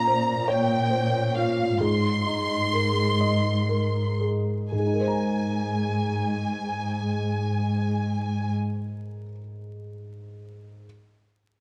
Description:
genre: cinematic, emotional film score for orchestra.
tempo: 38-49 BPM (dotted quarters).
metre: 6/8.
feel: rubato.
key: Ab major.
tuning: A4 = 440 Hz.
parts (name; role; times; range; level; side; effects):
rich symphonic violin section; melody; 0.0-8.5 s; F5 to C6; -31 LUFS; equal; none.
warm grand piano; accompaniment; 0.0-10.9 s; Ab2 to Bb5; -31 LUFS; equal; none.
warm symphonic cello section; bass; 0.0-8.5 s; Ab2 to Bb2; -29 LUFS; equal; none.
room: light reverb.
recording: close, detailed microphones, vinyl crackle.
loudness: -25 LUFS.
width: mono.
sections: 0.0-4.7 A section; 4.7-7.8 B section.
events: slowing down 0.0-4.7.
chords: 0.0 Bbmadd9; 1.8 Abadd9.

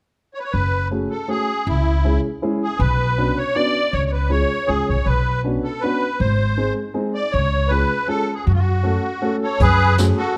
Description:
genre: musette waltz.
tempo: 159 BPM.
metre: 3/4.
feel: straight.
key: F# minor.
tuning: A4 = 441 Hz.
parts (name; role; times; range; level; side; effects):
musette accordion; melody; 0.3-10.4 s; E4 to D5; -24 LUFS; equal; none.
upright bass; bass; 0.5-10.1 s; F#1 to F#2; -21 LUFS; equal; none.
dark upright piano; accompaniment; 0.9-10.2 s; G#3 to A4; -26 LUFS; equal; none.
jazz brush drum kit; drums; 9.6-10.1 s; hi-hat, kick drum, snare drum; -25 LUFS; equal; none.
room: light reverb.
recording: none.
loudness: -20 LUFS.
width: mono.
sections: 0.5-9.6 A section.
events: none.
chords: 0.0 N.C.; 0.5 F#madd9; 1.7 C#m; 2.8 Bmadd9; 3.9 C#; 5.1 Bmadd9; 6.2 G#; 7.3 C#; 8.5 F#m; 9.6 F#madd9.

